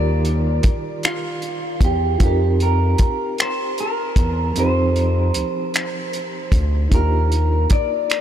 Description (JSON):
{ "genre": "slow six-eight R&B", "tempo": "51 BPM (dotted quarters)", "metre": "6/8", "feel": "straight", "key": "unclear", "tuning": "A4 = 440 Hz", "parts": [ { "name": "electric guitar at the edge of break-up", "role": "melody", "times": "0.0-8.2 s", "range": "F4 to D5", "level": "-23 LUFS", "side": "equal", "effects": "lush chorus, tape echo" }, { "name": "bright reed electric piano", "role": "accompaniment", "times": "0.0-8.2 s", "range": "Eb3 to C5", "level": "-26 LUFS", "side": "right 3 dB", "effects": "fast tremolo" }, { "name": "smooth synth bass", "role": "bass", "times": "0.0-7.8 s", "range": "D2 to F2", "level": "-19 LUFS", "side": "equal", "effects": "none" }, { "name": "cloth-damped thuddy drum kit", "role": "drums", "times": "0.2-8.2 s", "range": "finger snaps, hi-hat, kick drum", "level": "-20 LUFS", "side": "equal", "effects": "none" } ], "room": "light reverb, small room ambience", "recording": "none", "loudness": "-17 LUFS", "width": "side -10 dB against mid", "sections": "0.0-8.2 A section", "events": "none", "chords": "0.0 Ebmaj7; 2.2 F9sus4; 6.9 Ebmaj7", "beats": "1.03 | 2.21 3.39 | 4.56 5.74 | 6.92 8.09" }